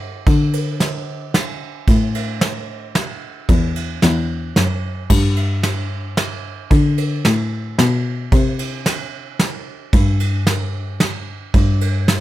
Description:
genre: honky-tonk and classic country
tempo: 112 BPM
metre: 3/4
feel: straight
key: G major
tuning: A4 = 440 Hz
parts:
  - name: dark cello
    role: bass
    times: 0.0-12.2 s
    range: E2 to D3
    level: -18 LUFS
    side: left 1 dB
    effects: none
  - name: soft brush drum kit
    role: drums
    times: 0.3-12.2 s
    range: crash cymbal, kick drum, ride cymbal, snare drum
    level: -19 LUFS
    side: right 1 dB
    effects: none
room: light reverb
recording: none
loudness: -16 LUFS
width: side -14 dB against mid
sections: 0.0-5.1 A section; 5.1-12.2 A section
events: none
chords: none

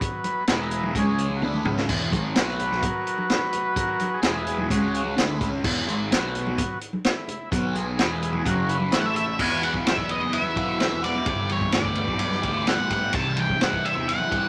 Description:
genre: psychedelic rock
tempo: 128 BPM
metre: 4/4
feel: straight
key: unclear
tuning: A4 = 440 Hz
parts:
  - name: overdriven combo organ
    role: sustained chords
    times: 0.0-14.5 s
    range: C#3 to C#5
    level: -31 LUFS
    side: equal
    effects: none
  - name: vintage drum kit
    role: drums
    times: 0.0-14.4 s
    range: crash cymbal, hi-hat, kick drum, ride cymbal, snare drum, toms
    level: -28 LUFS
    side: equal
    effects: none
  - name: congas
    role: percussion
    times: 0.2-14.3 s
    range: none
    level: -38 LUFS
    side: equal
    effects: none
  - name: fuzz guitar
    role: riff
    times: 0.5-14.5 s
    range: E2 to G4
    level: -30 LUFS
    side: equal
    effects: distortion, phaser
  - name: fuzz fingered electric bass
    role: bass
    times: 0.5-14.5 s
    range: E1 to G2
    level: -35 LUFS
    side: equal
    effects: overdrive
  - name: octave-fuzz lead guitar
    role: melody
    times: 8.9-14.5 s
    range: C#5 to A5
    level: -28 LUFS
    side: equal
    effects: distortion
room: light reverb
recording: none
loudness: -24 LUFS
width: mono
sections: 0.0-9.4 A section; 9.4-14.5 B section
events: transistor combo organ solo 0.0-9.4; drum fill 1.4-1.9, 8.9-9.4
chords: 0.5 E; 1.0 C#5; 1.4 E; 2.4 B5; 4.2 E; 4.7 C#5; 5.2 E; 6.1 B5; 8.0 E; 8.5 F#5; 8.9 A5; 9.4 Esus2; 11.3 G6; 13.1 C

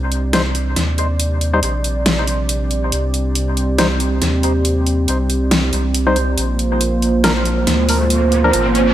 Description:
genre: deep dubstep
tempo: 139 BPM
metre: 4/4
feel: swing 57% on 16ths, half-time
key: C minor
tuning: A4 = 440 Hz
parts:
  - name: dark analog pad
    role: sustained chords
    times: 0.0-8.9 s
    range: Bb3 to D5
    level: -19 LUFS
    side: right 2 dB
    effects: chorus
  - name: saturated sub bass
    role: bass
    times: 0.0-8.9 s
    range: Ab1 to Eb2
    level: -19 LUFS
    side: equal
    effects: tube saturation
  - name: dubstep drum kit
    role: drums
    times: 0.1-8.8 s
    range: hi-hat, snare drum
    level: -19 LUFS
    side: equal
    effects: overdrive
  - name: percussive organ stab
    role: stabs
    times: 0.3-8.5 s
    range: F3 to C5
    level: -22 LUFS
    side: left 2 dB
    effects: chorus, cassette tape, dub echo
  - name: riser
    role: sound effects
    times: 7.5-8.9 s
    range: none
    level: -23 LUFS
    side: equal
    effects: none
room: light reverb, digital ambience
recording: none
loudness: -14 LUFS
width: side -12 dB against mid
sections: 0.0-8.9 A section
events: build-up 0.0-8.9; filter sweep on synth stab 0.0-8.9; riser 7.5-8.9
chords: 0.0 Cm; 6.4 Bb

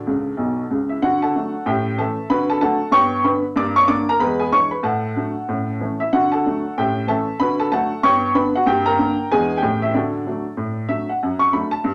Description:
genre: jazz, stride piano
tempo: 188 BPM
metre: 4/4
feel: swing 61% on 8ths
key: D major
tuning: A4 = 439 Hz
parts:
  - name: warm upright piano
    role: solo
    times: 0.0-11.9 s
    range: B1 to D6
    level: -20 LUFS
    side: equal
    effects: none
room: wet small room reverb, RT60 0.5 s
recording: none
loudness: -20 LUFS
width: mono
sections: 0.0-1.0 A section; 1.0-11.2 A section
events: upright piano fill 0.1-1.0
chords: 0.0 D5; 1.0 D; 1.7 A7; 2.3 D; 2.9 G; 3.6 Gm; 4.2 E7; 4.8 D/A; 5.5 A; 6.1 D; 6.8 A7; 7.4 D; 8.0 G; 8.7 Gm; 9.3 E7; 9.6 A7; 9.9 D; 11.2 D/F#

